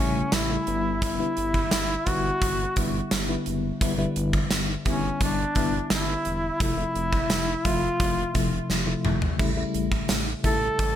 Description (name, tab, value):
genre	1980s-style pop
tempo	86 BPM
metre	4/4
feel	straight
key	E dorian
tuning	A4 = 440 Hz
part	clear duduk	melody	0.0-11.0 s	C#4 to A4	-27 LUFS	equal	ping-pong delay
part	FM electric piano with tremolo	accompaniment	0.0-11.0 s	C3 to E5	-28 LUFS	left 2 dB	phaser
part	round analog bass	bass	0.0-11.0 s	E1 to A1	-33 LUFS	equal	none
part	gated 80s drum kit	drums	0.3-11.0 s	hi-hat, kick drum, snare drum, splash cymbal, tambourine, toms	-26 LUFS	right 1 dB	gated reverb
part	tambourine	percussion	0.3-10.2 s	none	barely audible	none	none
room	light reverb, studio reverb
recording	bright 1980s-style digital production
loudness	-22 LUFS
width	side -10 dB against mid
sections	0.0-11.0 A section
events	drum fill 8.7-9.4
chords	0.0 A7; 0.7 Em7/G; 3.8 G6; 6.6 Fmaj7; 9.4 A7